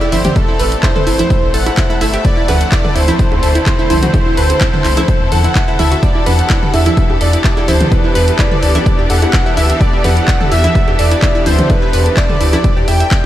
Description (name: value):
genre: progressive house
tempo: 127 BPM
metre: 4/4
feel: straight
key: E minor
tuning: A4 = 440 Hz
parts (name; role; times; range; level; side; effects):
- warm velvety synth lead; melody; 0.0-13.3 s; A4 to G5; -19 LUFS; equal; chorus, cassette tape, sidechain pumping, diffuse ambient delay
- soft supersaw; second line; 0.0-13.3 s; A4 to G5; -24 LUFS; equal; none
- clear studio string section; sustained chords; 0.0-13.3 s; D3 to A4; -20 LUFS; left 1 dB; sidechain pumping
- analog pluck; arpeggios; 0.0-13.1 s; E4 to E6; -19 LUFS; right 1 dB; chorus, sidechain pumping, diffuse ambient delay
- electronic bongos, congas and toms; percussion; 0.0-13.0 s; none; -22 LUFS; right 1 dB; sidechain pumping on perc, small room reverb, sidechain pumping on toms
- saturated sub bass; bass; 0.1-13.0 s; G1 to E2; -15 LUFS; equal; sidechain pumping
- house drum kit; drums; 0.1-13.2 s; handclaps, hi-hat; -22 LUFS; left 1 dB; small room reverb
- electronic kick drum; drums; 0.4-13.2 s; none; -14 LUFS; equal; small room reverb
room: moderate huge ambient reverb, RT60 8.4 s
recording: dreamy mix soaked in reverb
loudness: -10 LUFS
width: side -13 dB against mid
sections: 0.0-13.3 A section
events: none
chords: 0.0 Am7; 2.2 D7; 6.0 Em7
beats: | 0.36 0.83 1.30 1.78 | 2.25 2.72 3.19 3.67 | 4.14 4.61 5.08 5.55 | 6.03 6.50 6.97 7.45 | 7.92 8.39 8.86 9.34 | 9.81 10.28 10.75 11.22 | 11.70 12.17 12.64 13.11